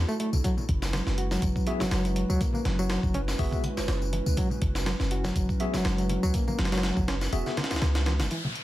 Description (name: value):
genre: breakbeat, breaks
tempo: 122 BPM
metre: 4/4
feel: swing 55% on 16ths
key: unclear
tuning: A4 = 440 Hz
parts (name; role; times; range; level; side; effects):
- dark analog pad; sustained chords; 0.0-8.6 s; G#3 to B4; -36 LUFS; right 2 dB; chorus, sidechain pumping
- warm 808-style bass; bass; 0.0-8.3 s; E1 to C#2; -28 LUFS; equal; none
- overdriven reed electric piano; riff; 0.1-8.4 s; E3 to F#4; -30 LUFS; equal; fast tremolo, low-pass filter, ping-pong delay
- tambourine; drums; 0.1-8.3 s; none; -42 LUFS; left 4 dB; studio reverb
- breakbeat sampler-style drum kit; drums; 0.2-8.6 s; hi-hat, kick drum, snare drum; -30 LUFS; equal; high-pass filter on hats, studio reverb, high-pass filter on kick, high-pass filter on snare
- congas; percussion; 0.3-8.5 s; none; -36 LUFS; left 1 dB; none
- tine electric piano; stabs; 1.7-7.6 s; B3 to E5; -36 LUFS; left 3 dB; medium stereo tremolo, ping-pong delay
- downlifter; sound effects; 8.3-8.6 s; none; -34 LUFS; left 1 dB; none
room: moderate small room reverb, RT60 0.5 s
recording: dense, heavily limited modern master, vinyl crackle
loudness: -25 LUFS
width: side -15 dB against mid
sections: 0.0-8.3 A section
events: none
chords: 0.4 F#9sus4